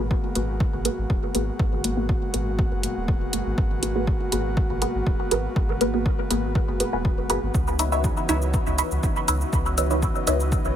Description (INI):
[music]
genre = dub techno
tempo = 121 BPM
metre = 4/4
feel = straight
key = G# minor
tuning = A4 = 440 Hz
[part]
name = airy breathy pad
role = sustained chords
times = 0.0-10.8 s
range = E3 to F#4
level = -32 LUFS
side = left 1 dB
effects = chorus, sidechain pumping
[part]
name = filtered dub chord stab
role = stabs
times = 0.0-10.4 s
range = A#3 to E5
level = -27 LUFS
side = equal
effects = phaser, sidechain pumping, dub echo
[part]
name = soft dub sub bass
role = bass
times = 0.0-10.8 s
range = D#1 to C#2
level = -28 LUFS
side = equal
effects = sidechain pumping
[part]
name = wind-like tuned noise texture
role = texture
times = 0.5-10.8 s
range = F#4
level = -36 LUFS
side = right 2 dB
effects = built-in reverb, sidechain pumping
[part]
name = electronic kick drum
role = drums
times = 0.1-10.6 s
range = none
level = -24 LUFS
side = equal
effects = overdrive
[part]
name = electronic hi-hat and shaker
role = drums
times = 0.4-10.7 s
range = none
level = -29 LUFS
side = right 1 dB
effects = overdrive
[sound]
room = little or no reverb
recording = none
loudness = -21 LUFS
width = side -10 dB against mid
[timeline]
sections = 0.0-10.8 A section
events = none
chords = 0.0 G#m9; 7.5 C#m9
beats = 0.11 0.60 1.10 | 1.59 2.09 2.59 3.08 | 3.58 4.07 4.57 5.07 | 5.56 6.06 6.55 7.05 | 7.54 8.04 8.54 9.03 | 9.53 10.03 10.52